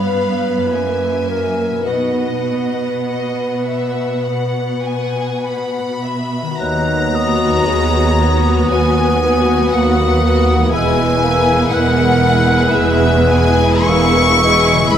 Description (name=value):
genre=classical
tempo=46-60 BPM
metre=4/4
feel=rubato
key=B major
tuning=A4 = 440 Hz
part: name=clear studio violin section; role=melody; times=0.0-15.0 s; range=E5 to C#6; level=-20 LUFS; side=left 3 dB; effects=none
part: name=mellow clarinet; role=second line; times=0.0-15.0 s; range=G#4 to D#5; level=-22 LUFS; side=equal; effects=none
part: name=rich studio violin section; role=second line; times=0.0-14.9 s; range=F#4 to G#5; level=-25 LUFS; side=left 2 dB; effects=none
part: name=rich studio viola section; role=accompaniment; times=0.0-14.9 s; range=G#3 to F#4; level=-21 LUFS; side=left 1 dB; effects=none
part: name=concert harp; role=arpeggios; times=0.0-15.0 s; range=F#2 to B4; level=-28 LUFS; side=left 7 dB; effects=none
part: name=rich studio cello section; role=bass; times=0.0-15.0 s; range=C#2 to B2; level=-20 LUFS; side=right 2 dB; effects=none
part: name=mellow hollow silver concert flute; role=second line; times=6.6-15.0 s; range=D#6 to F#6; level=-22 LUFS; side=left 1 dB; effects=none
part: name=mellow bassoon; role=accompaniment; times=6.6-15.0 s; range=F#3 to B3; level=-22 LUFS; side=right 2 dB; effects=none
part: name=mellow French horn section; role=sustained chords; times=6.6-15.0 s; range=E3 to C#4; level=-22 LUFS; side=left 3 dB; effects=none
part: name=rich studio double bass section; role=bass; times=6.6-15.0 s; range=E1 to D#2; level=-19 LUFS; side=right 2 dB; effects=none
room=wet scoring stage reverb, RT60 1.8 s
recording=none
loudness=-13 LUFS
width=side -9 dB against mid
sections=0.0-6.6 A section; 6.6-15.0 B section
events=none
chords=0.0 G7; 0.7 F#9; 1.9 B; 6.6 B/D#; 10.7 E